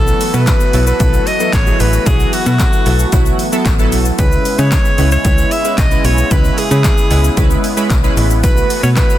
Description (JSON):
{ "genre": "dance-pop", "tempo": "113 BPM", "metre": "4/4", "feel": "straight", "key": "C# minor", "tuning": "A4 = 440 Hz", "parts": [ { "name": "edgy alto saxophone", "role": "melody", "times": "0.0-9.2 s", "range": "F#4 to E5", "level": "-19 LUFS", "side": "equal", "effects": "dub echo" }, { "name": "chorused retro synth keys", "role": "accompaniment", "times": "0.0-9.1 s", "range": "F#3 to B4", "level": "-19 LUFS", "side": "right 2 dB", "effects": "none" }, { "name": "filtered supersaw swell", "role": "sustained chords", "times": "0.0-9.2 s", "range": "C#3 to F#4", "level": "-23 LUFS", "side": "equal", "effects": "sidechain pumping" }, { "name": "slap-like FM bass", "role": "bass", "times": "0.0-9.0 s", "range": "A1 to C#3", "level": "-14 LUFS", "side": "equal", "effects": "sidechain pumping" }, { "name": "punchy analog drum machine", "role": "drums", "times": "0.1-9.2 s", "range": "handclaps, hi-hat, kick drum, shaker", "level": "-14 LUFS", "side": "equal", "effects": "none" }, { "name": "egg shaker", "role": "percussion", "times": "0.1-9.2 s", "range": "none", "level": "-32 LUFS", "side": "left 9 dB", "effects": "none" } ], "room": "digital ambience", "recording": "dense, heavily limited modern master", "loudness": "-10 LUFS", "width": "side -13 dB against mid", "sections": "0.0-9.2 A section", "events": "none", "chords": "0.0 B7sus4; 4.2 C#m7; 8.4 B7sus4", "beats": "0.47 1.00 1.53 | 2.06 2.60 3.13 3.66 | 4.19 4.72 5.25 5.78 | 6.31 6.84 7.37 7.90 | 8.44 8.97" }